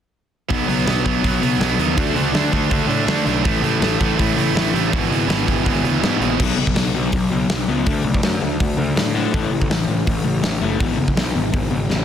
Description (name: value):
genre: punk rock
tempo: 163 BPM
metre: 4/4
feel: straight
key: unclear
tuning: A4 = 440 Hz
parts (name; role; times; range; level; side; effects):
- raw garage guitar; riff; 0.5-12.0 s; E2 to D4; -22 LUFS; left 7 dB; overdrive
- tight distorted guitar; riff; 0.5-6.4 s; E2 to D4; -21 LUFS; right 14 dB; distortion
- fuzz picked electric bass; bass; 0.5-12.0 s; F#1 to D3; -23 LUFS; equal; overdrive
- big rock drum kit; drums; 0.5-12.0 s; crash cymbal, hi-hat, kick drum, snare drum; -21 LUFS; equal; none
room: little or no reverb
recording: dense, heavily limited modern master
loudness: -16 LUFS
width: side -9 dB against mid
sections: 0.5-6.4 A section; 6.4-12.0 B section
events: drum fill 11.9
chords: 0.5 B5; 2.0 D5; 3.4 A5; 4.9 E/G#; 6.4 B5; 7.9 D5; 9.3 A5; 10.8 E